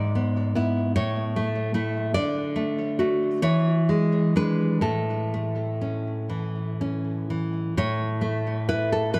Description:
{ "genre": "romantic piece for solo classical guitar", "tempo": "40-51 BPM (dotted quarters)", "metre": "6/8", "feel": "rubato", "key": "A major", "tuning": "A4 = 439 Hz", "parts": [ { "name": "nylon-string guitar", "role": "solo", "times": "0.0-9.2 s", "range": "G#2 to D5", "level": "-25 LUFS", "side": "equal", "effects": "tape echo" } ], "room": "moderate recital hall reverb, RT60 1.7 s", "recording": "dark, warm production", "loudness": "-25 LUFS", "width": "mono", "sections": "0.0-7.8 A section; 7.8-9.2 A section", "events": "none", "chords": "0.0 E/G#; 1.0 A; 2.2 D; 3.5 E7; 4.9 A", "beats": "0.97 | 2.17 3.46 | 4.86 6.33 | 7.80 9.16" }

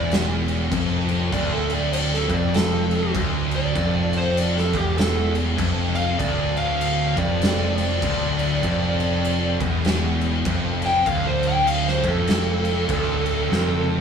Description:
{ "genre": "stoner and doom metal", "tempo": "98 BPM", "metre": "4/4", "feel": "swing 60% on 8ths", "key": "D minor", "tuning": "A4 = 439 Hz", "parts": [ { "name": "fuzz lead guitar", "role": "melody", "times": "0.0-13.9 s", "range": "G4 to G5", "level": "-24 LUFS", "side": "equal", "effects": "distortion" }, { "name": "thick fuzz guitar", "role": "riff", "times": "0.0-14.0 s", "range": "D2 to F2", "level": "-27 LUFS", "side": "left 6 dB", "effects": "distortion" }, { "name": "thick fuzz guitar", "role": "riff", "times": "0.0-14.0 s", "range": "D2 to F2", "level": "-28 LUFS", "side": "right 9 dB", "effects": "distortion" }, { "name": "tight distorted guitar", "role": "riff", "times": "0.0-14.0 s", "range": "D2 to F2", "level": "-29 LUFS", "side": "equal", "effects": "distortion" }, { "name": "growling picked electric bass", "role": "bass", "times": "0.0-14.0 s", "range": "D1 to F1", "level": "-27 LUFS", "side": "equal", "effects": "overdrive" }, { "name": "oversized low-tuned drum kit", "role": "drums", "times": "0.1-13.9 s", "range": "crash cymbal, kick drum, snare drum, toms", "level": "-25 LUFS", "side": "left 1 dB", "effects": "none" } ], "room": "moderate studio reverb, RT60 0.8 s", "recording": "band playing live in one room, small room ambience", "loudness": "-19 LUFS", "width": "side -7 dB against mid", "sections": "0.0-14.0 A section", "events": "lead electric guitar solo 0.0-14.0; drum fill 13.5-14.0", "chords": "0.0 Dm", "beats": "0.10 0.71 | 1.32 1.93 2.54 3.15 | 3.75 4.36 4.97 5.58 | 6.19 6.80 7.41 8.02 | 8.62 9.23 9.84 10.45 | 11.06 11.67 12.28 12.89 | 13.50" }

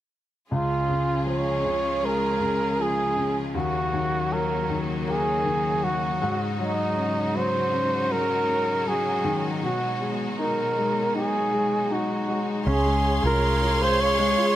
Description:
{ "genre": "pop ballad", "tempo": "79 BPM", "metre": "4/4", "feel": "straight", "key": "Db major", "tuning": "A4 = 438 Hz", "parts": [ { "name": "breathy flugelhorn", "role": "melody", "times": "0.5-14.6 s", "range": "Eb4 to Db5", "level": "-25 LUFS", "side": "right 1 dB", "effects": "none" }, { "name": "warm concert grand piano", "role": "accompaniment", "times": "0.5-14.6 s", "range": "Db2 to F4", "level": "-27 LUFS", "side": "left 2 dB", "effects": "none" }, { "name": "clear studio string section", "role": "sustained chords", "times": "0.5-14.6 s", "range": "Cb3 to C6", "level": "-30 LUFS", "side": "right 1 dB", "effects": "none" }, { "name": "vintage muted fingered electric bass", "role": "bass", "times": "12.7-14.3 s", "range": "C2 to Db2", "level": "-25 LUFS", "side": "equal", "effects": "none" } ], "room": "light reverb, small room ambience", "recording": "none", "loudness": "-22 LUFS", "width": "side -13 dB against mid", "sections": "0.5-12.7 A section; 12.7-14.6 B section", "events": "none", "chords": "0.5 Db; 3.5 Ebm7; 6.2 Ab7sus4; 9.6 Cb6; 12.7 Dbmaj7", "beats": "| 0.51 1.27 2.03 2.79 | 3.55 4.31 5.07 5.83 | 6.59 7.35 8.11 8.87 | 9.63 10.39 11.14 11.90 | 12.66 13.42 14.18" }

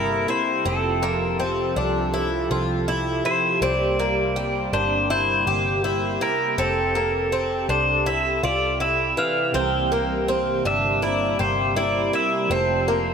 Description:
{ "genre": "dream pop", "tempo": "81 BPM", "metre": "4/4", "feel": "straight", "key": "C mixolydian", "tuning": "A4 = 439 Hz", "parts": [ { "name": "pedal steel guitar", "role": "melody", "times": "0.0-13.1 s", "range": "A4 to G5", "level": "-23 LUFS", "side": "equal", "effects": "ping-pong delay" }, { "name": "warm analog pad", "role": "sustained chords", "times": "0.0-13.1 s", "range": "C3 to A4", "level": "-27 LUFS", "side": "right 1 dB", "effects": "wide subtle chorus" }, { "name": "picked twelve-string acoustic guitar", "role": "arpeggios", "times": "0.0-13.1 s", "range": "E3 to G4", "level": "-25 LUFS", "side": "left 1 dB", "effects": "wide subtle chorus, ping-pong delay" }, { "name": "vintage muted picked electric bass", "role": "bass", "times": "0.0-13.1 s", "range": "F1 to C2", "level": "-29 LUFS", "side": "equal", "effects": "none" }, { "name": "glockenspiel with brass mallets", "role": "texture", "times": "5.1-9.9 s", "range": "F6 to G6", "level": "-36 LUFS", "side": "equal", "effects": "stereo widening, ping-pong delay" }, { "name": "clean electric guitar", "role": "accompaniment", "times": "9.5-13.1 s", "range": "C3 to Bb4", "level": "-31 LUFS", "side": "right 4 dB", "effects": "tremolo, wide subtle chorus" } ], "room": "moderate huge ambient reverb, RT60 4.9 s", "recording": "none", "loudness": "-20 LUFS", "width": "side -6 dB against mid", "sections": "0.0-13.1 A section", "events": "none", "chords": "0.0 C7; 0.7 Fmaj7; 3.6 C7; 6.6 Fmaj7; 9.5 C7; 12.5 Fmaj7", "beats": "| 0.65 1.40 2.14 2.88 | 3.62 4.36 5.10 5.84 | 6.58 7.32 8.06 8.80 | 9.54 10.28 11.02 11.77 | 12.51" }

